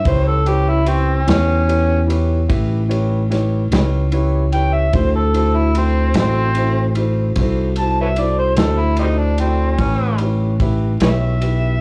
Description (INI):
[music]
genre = slow blues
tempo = 49 BPM (dotted quarters)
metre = 12/8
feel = straight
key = A mixolydian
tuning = A4 = 438 Hz
[part]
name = overdriven harmonica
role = melody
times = 0.0-11.8 s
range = G3 to A5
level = -22 LUFS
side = equal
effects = plate reverb
[part]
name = warm concert grand piano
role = accompaniment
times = 0.0-11.7 s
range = E4 to C#6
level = -26 LUFS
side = equal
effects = plate reverb
[part]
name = fingered electric bass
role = bass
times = 0.1-11.8 s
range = A1 to E2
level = -19 LUFS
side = equal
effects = none
[part]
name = natural country drum kit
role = drums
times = 0.1-11.6 s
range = kick drum, ride cymbal, snare drum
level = -25 LUFS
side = equal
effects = none
[sound]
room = light reverb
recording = worn, warbling old tape, cassette tape, warbly pitch drift, small room ambience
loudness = -17 LUFS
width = mono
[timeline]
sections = 0.0-11.8 A section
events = harmonica solo 0.0-11.8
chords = 0.0 A9; 4.9 D9; 9.8 A9